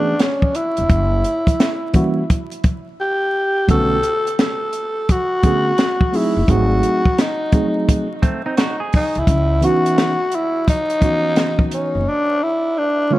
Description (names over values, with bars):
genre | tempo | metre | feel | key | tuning
hip hop, jazz-hop | 86 BPM | 4/4 | swing 65% on 16ths | F# minor | A4 = 440 Hz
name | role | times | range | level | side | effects
growling tenor saxophone | melody | 0.0-13.2 s | C#4 to A4 | -19 LUFS | equal | tape echo
tine electric piano | accompaniment | 0.0-13.2 s | D3 to G#4 | -20 LUFS | right 2 dB | medium stereo tremolo
compact cocktail drum kit | drums | 0.2-11.9 s | hi-hat, kick drum, snare drum | -17 LUFS | equal | none
upright bass | bass | 0.8-12.1 s | E1 to C#2 | -19 LUFS | equal | none
semi-hollow electric guitar | second line | 8.2-9.2 s | A3 to G#4 | -26 LUFS | right 3 dB | tape echo
room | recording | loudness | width
light reverb, small room ambience | dark, warm production, vinyl crackle | -15 LUFS | side -16 dB against mid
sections
0.0-13.2 A section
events
drums muted 3.0-3.7, 12.1-13.2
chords
0.0 Amaj9; 0.9 F#7b9; 3.7 Bm9; 6.5 G#7b9; 9.3 C#m11; 12.1 G9